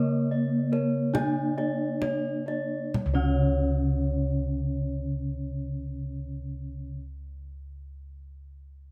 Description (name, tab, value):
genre	Javanese gamelan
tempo	32-37 BPM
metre	4/4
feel	straight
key	unclear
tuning	A4 = 440 Hz
part	gamelan-type bronze metallophone	melody	0.0-7.0 s	A#3+20c to D4+50c	-34 LUFS	equal	none
part	gamelan-type bronze metallophone	accompaniment	0.0-7.0 s	C#3 to A#3+20c	-34 LUFS	equal	none
part	gamelan-type bossed gongs	arpeggios	0.0-7.0 s	C#5 to D5+50c	-39 LUFS	equal	none
part	gamelan-type bronze metallophone	arpeggios	0.0-7.0 s	A#4+20c to D5+50c	-40 LUFS	equal	none
part	gamelan-type bossed gongs	bass	0.0-6.9 s	C#2 to D4+50c	-34 LUFS	equal	none
part	kendang	percussion	0.7-3.8 s	none	-36 LUFS	equal	none
room	light reverb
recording	close, detailed microphones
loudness	-28 LUFS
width	mono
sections	0.0-2.9 A section; 2.9-8.9 B section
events	slowing down 0.0-2.9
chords	none